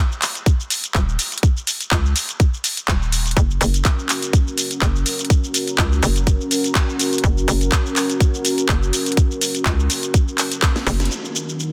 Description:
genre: bass house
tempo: 124 BPM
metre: 4/4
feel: swing 55% on 16ths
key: unclear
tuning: A4 = 440 Hz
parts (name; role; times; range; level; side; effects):
- garage drum kit; drums; 0.1-11.7 s; handclaps, hi-hat, shaker, snare drum; -24 LUFS; equal; none
- electronic kick drum; drums; 0.5-10.7 s; none; -19 LUFS; equal; none
- hollow knocking FM bass; bass; 0.9-11.1 s; Eb1 to Db2; -22 LUFS; equal; sidechain pumping
- dark analog pad; sustained chords; 3.4-11.7 s; Eb3 to Bb4; -27 LUFS; equal; chorus, sidechain pumping
room: light reverb, digital ambience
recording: dense, heavily limited modern master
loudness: -19 LUFS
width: mono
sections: 0.0-11.1 A section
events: drum fill 10.6-11.1; band accent 11.0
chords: 0.0 Dbsus2/Eb; 3.4 Gb; 11.1 Ebm

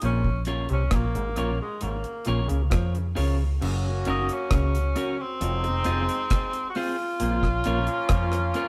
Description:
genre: roots reggae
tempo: 67 BPM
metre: 4/4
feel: straight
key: Bb minor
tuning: A4 = 440 Hz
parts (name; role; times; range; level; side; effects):
- warm tenor saxophone; melody; 0.0-8.7 s; Ab3 to Gb4; -32 LUFS; equal; none
- overdriven clav; riff; 0.0-8.4 s; F2 to F3; -34 LUFS; equal; tape echo
- vintage muted fingered electric bass; bass; 0.0-8.5 s; F1 to F2; -29 LUFS; equal; none
- deep reggae drum kit; drums; 0.0-8.7 s; crash cymbal, hi-hat, kick drum, rim click; -30 LUFS; equal; tape echo
- electric guitar at the edge of break-up; accompaniment; 0.5-8.7 s; C4 to Db5; -36 LUFS; equal; spring reverb, tape echo
- bright trombone section; second line; 3.6-8.7 s; F3 to Gb4; -36 LUFS; equal; none
room: light reverb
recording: band playing live in one room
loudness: -26 LUFS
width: mono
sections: 0.0-3.6 A section; 3.6-8.7 B section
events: none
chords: 0.0 Bbm; 3.6 Gb; 5.4 Fm; 7.2 Bbm

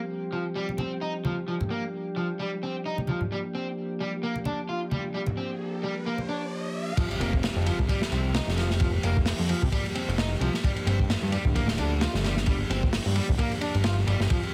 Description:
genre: breakbeat, breaks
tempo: 131 BPM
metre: 4/4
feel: swing 57% on 16ths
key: unclear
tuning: A4 = 440 Hz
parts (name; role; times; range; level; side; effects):
- mellow tonewheel organ; sustained chords; 0.0-14.5 s; F3 to G4; -37 LUFS; equal; slow rotary speaker, sidechain pumping
- overdriven semi-hollow guitar; riff; 0.3-14.4 s; F3 to F4; -35 LUFS; equal; tape echo
- congas; percussion; 0.7-6.3 s; none; -34 LUFS; equal; none
- riser and impact; sound effects; 5.1-8.8 s; none; -42 LUFS; equal; none
- crunchy breakbeat drum kit; drums; 7.0-14.5 s; crash cymbal, hi-hat, kick drum, ride cymbal, snare drum; -29 LUFS; equal; none
- fat analog bass; bass; 7.2-14.3 s; D1 to G2; -29 LUFS; equal; none
room: moderate small room reverb, RT60 0.5 s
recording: heavily compressed radio sound, multiband compression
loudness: -28 LUFS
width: mono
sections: 0.0-7.0 A section; 7.0-14.5 B section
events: riser 5.1-7.0; drop 7.0-14.5; impact 7.0-8.8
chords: 0.0 Fsus2; 3.3 Gm7; 7.0 Fsus2; 10.6 Gm7

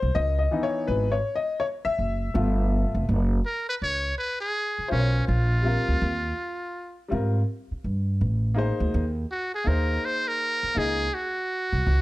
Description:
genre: hip hop, jazz-hop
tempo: 82 BPM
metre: 4/4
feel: swing 63% on 16ths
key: unclear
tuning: A4 = 441 Hz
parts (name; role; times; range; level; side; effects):
- warm concert grand piano; accompaniment; 0.0-11.1 s; E3 to E5; -28 LUFS; left 3 dB; plate reverb
- upright bass; bass; 0.0-12.0 s; F1 to G#2; -24 LUFS; equal; none
- trumpet with metal mute; melody; 3.5-12.0 s; C#4 to C#5; -27 LUFS; right 1 dB; plate reverb
room: light reverb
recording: dark, warm production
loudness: -23 LUFS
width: side -18 dB against mid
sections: 0.0-3.1 A section; 3.1-12.0 A section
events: grand piano solo 0.0-3.1; muted trumpet solo 3.1-12.0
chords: 0.2 C#m9; 2.3 G9; 3.1 F#sus4; 5.3 A#; 6.0 D#add9; 8.2 Cm13/A; 8.9 G#7/D#

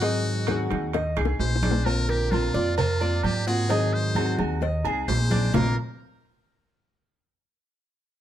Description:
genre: latin, Cuban son and guajira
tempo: 130 BPM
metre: 4/4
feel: straight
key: unclear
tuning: A4 = 441 Hz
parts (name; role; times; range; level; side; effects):
- trumpet with metal mute; melody; 0.0-5.8 s; F4 to C5; -31 LUFS; left 2 dB; plate reverb
- flamenco guitar; accompaniment; 0.0-5.7 s; Bb2 to Ab4; -29 LUFS; left 3 dB; none
- Cuban tres; arpeggios; 0.0-5.8 s; Bb3 to Eb5; -30 LUFS; right 3 dB; none
- upright bass; bass; 0.0-5.8 s; Bb1 to Ab2; -26 LUFS; equal; none
- bongos and cowbell; percussion; 0.0-5.6 s; none; -32 LUFS; left 5 dB; none
- congas; percussion; 0.0-5.6 s; none; -30 LUFS; right 1 dB; none
- timbales and agogo bells; percussion; 0.0-5.6 s; none; -34 LUFS; right 8 dB; none
room: light reverb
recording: dark, warm production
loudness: -22 LUFS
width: side -11 dB against mid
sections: 0.0-1.9 A section; 1.9-5.5 B section; 5.5-7.4 C section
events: drum fill 0.9-1.9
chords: 0.0 Ab7; 1.9 Bbadd9; 3.7 Ab7; 5.5 Bb5

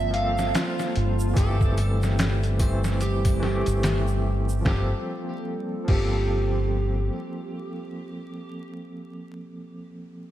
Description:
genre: trip hop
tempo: 73 BPM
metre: 4/4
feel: swing 59% on 16ths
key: G dorian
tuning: A4 = 440 Hz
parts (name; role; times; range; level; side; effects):
- electric slide guitar; melody; 0.0-8.7 s; F4 to F5; -31 LUFS; right 1 dB; wide subtle chorus, tape echo
- barky tine electric piano; accompaniment; 0.0-10.3 s; E3 to C5; -32 LUFS; equal; tremolo, tape echo
- warbly tape-like pad; sustained chords; 0.0-8.3 s; G3 to A5; -34 LUFS; right 1 dB; chorus, built-in reverb
- deep dub fingered electric bass; bass; 0.0-7.1 s; G1; -24 LUFS; equal; none
- trip hop sampler-style drum kit; drums; 0.1-6.2 s; crash cymbal, hi-hat, kick drum, snare drum; -26 LUFS; equal; none
- tube shaker and triangle; percussion; 0.4-4.6 s; none; -44 LUFS; right 5 dB; none
room: light reverb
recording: vinyl crackle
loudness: -22 LUFS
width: side -13 dB against mid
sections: 0.0-4.7 A section; 4.7-7.9 B section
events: none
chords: 0.0 Gm11; 1.4 Am7/G; 4.7 Gm11

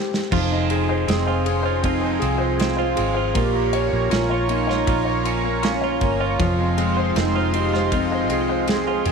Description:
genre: pop ballad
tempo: 79 BPM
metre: 4/4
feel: straight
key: F minor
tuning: A4 = 440 Hz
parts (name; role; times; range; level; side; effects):
- warm concert grand piano; accompaniment; 0.0-9.1 s; C3 to Db5; -24 LUFS; left 12 dB; none
- loose indie drum kit; drums; 0.1-9.1 s; crash cymbal, kick drum, ride cymbal, snare drum; -27 LUFS; right 2 dB; none
- dark French horn section; second line; 0.3-9.1 s; C4 to Ab4; -27 LUFS; right 15 dB; none
- chorused pulse-width pad; sustained chords; 0.6-9.1 s; F4 to Db6; -28 LUFS; right 1 dB; none
- direct-recorded clean electric guitar; arpeggios; 0.3-9.1 s; F2 to F4; -27 LUFS; right 13 dB; none
- vintage muted fingered electric bass; bass; 0.3-9.1 s; F1 to C2; -25 LUFS; right 1 dB; none
room: light reverb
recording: 1960s-style stereo with parts hard left and right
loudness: -18 LUFS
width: side -5 dB against mid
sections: 0.3-9.1 A section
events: drum fill 0.0-0.3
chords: 0.3 Fm7; 3.4 Bbm; 6.4 Fm7

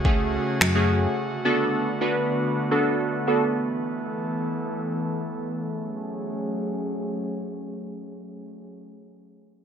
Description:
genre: dance-pop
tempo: 107 BPM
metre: 4/4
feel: straight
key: F# minor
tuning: A4 = 435 Hz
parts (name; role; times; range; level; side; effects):
- glassy digital keys; accompaniment; 0.0-3.4 s; A3 to B4; -24 LUFS; equal; chorus, phaser, sidechain pumping, low-pass filter
- airy breathy pad; sustained chords; 0.0-8.7 s; C#3 to A4; -28 LUFS; equal; chorus, sidechain pumping, low-pass filter
- slap-like FM bass; bass; 0.0-1.1 s; C#2 to F#2; -24 LUFS; equal; sidechain pumping
- deep house drum kit; drums; 0.0-0.7 s; finger snaps, kick drum; -22 LUFS; equal; overdrive, gated reverb
- downlifter; sound effects; 0.0-1.2 s; none; barely audible; none; none
room: wet plate reverb, RT60 1.4 s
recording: bright 1980s-style digital production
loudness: -23 LUFS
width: side -8 dB against mid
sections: 0.0-5.7 A section; 5.7-7.9 B section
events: filter sweep 0.0-5.7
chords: 0.0 F#madd9; 1.2 Bm7; 3.4 Asus2; 5.7 F#madd9

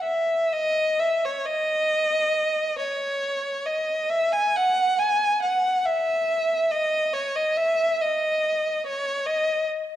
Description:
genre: classical, free, expressive piece for unaccompanied violin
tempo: 40-49 BPM (dotted quarters)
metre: 6/8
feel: rubato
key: unclear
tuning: A4 = 441 Hz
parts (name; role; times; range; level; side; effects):
- rich violin; solo; 0.0-9.7 s; C#5 to G#5; -21 LUFS; equal; none
room: moderate scoring stage reverb, RT60 1.7 s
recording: dark, warm production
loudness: -21 LUFS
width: side -12 dB against mid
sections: 0.0-10.0 A section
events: none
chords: none

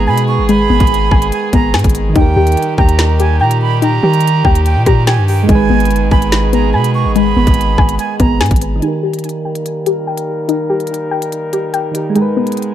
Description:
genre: hip hop, drill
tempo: 144 BPM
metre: 4/4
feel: half-time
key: G# harmonic minor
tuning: A4 = 440 Hz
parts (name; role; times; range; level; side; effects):
- breathy jazz flute; second line; 0.0-8.4 s; G5 to C#6; -19 LUFS; right 8 dB; ping-pong delay
- soft electric-piano-like synth keys; accompaniment; 0.0-12.7 s; D#3 to B4; -19 LUFS; right 4 dB; chorus, low-pass filter
- muted French horn section; sustained chords; 0.0-12.7 s; D#3 to A#4; -23 LUFS; left 2 dB; low-pass filter
- soft round pluck; arpeggios; 0.0-12.7 s; G#3 to G#5; -17 LUFS; left 4 dB; chorus, low-pass filter, ping-pong delay
- long sustained 808-style bass; bass; 0.0-8.8 s; G1 to D#3; -14 LUFS; equal; none
- drill drum kit; drums; 0.2-12.7 s; hi-hat, kick drum, rim click, snare drum; -14 LUFS; equal; none
room: little or no reverb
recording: dark, warm production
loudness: -11 LUFS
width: side -11 dB against mid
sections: 0.0-8.8 A section; 8.8-12.7 B section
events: filter sweep 8.8-12.7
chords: 0.0 G#m; 2.2 D#; 5.5 G#m; 8.8 D#; 12.2 G#madd9

